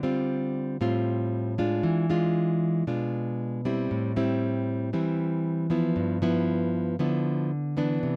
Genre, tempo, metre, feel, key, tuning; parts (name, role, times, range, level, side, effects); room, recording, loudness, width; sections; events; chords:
bossa nova; 116 BPM; 4/4; straight; A4 = 440 Hz
nylon-string guitar; solo; 0.0-8.2 s; G2 to F4; -27 LUFS; equal
little or no reverb; dry, close 1970s-style studio recording; -27 LUFS; mono
0.0-8.2 A section
0.0 Dm7; 1.8 E7b9; 3.9 Am7; 6.0 G6